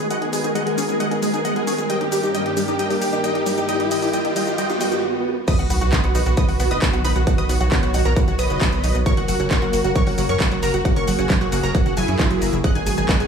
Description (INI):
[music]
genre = uplifting trance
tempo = 134 BPM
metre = 4/4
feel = straight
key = B major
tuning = A4 = 441 Hz
[part]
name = dense compressed supersaw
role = melody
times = 0.0-13.3 s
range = D#4 to G5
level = -24 LUFS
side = right 1 dB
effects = sidechain pumping, low-pass filter, tape echo
[part]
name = lush unison pad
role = sustained chords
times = 0.0-13.3 s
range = G2 to C#5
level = -26 LUFS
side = equal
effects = chorus, sidechain pumping
[part]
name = tight sequenced synth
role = arpeggios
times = 0.0-13.3 s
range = F#3 to F#4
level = -26 LUFS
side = left 1 dB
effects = chorus, phaser, sidechain pumping, tape echo
[part]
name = riser, swell and sub drop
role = sound effects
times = 0.0-7.3 s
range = none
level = -27 LUFS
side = right 1 dB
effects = none
[part]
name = big-room dance drum kit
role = drums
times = 0.1-13.3 s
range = crash cymbal, handclaps, hi-hat, shaker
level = -28 LUFS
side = equal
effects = sidechain pumping on hats, sidechain pumping on perc, sidechain pumping on cymbals
[part]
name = analog pluck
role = second line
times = 5.5-13.3 s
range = F#5 to F#6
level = -30 LUFS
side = left 1 dB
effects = chorus, sidechain pumping, tape echo
[part]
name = electronic kick drum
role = drums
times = 5.5-13.2 s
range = none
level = -20 LUFS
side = right 1 dB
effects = none
[part]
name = tight sequencer bass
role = bass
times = 5.6-13.3 s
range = F#1 to F#2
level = -22 LUFS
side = equal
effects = sidechain pumping
[sound]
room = light reverb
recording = studio reverb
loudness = -17 LUFS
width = side -6 dB against mid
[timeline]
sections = 0.0-5.5 A section; 5.5-13.3 B section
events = build-up 0.0-5.5; riser 0.0-5.0; swell 4.6-5.5; drop 5.5-13.3; impact 5.5-7.3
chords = 0.0 G#m7; 1.9 D#/G; 5.5 B; 9.1 F#; 12.6 G#m7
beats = | 0.10 0.55 1.00 1.45 | 1.90 2.34 2.79 3.24 | 3.69 4.13 4.58 5.03 | 5.48 5.93 6.37 6.82 | 7.27 7.72 8.16 8.61 | 9.06 9.51 9.96 10.40 | 10.85 11.30 11.75 12.20 | 12.64 13.09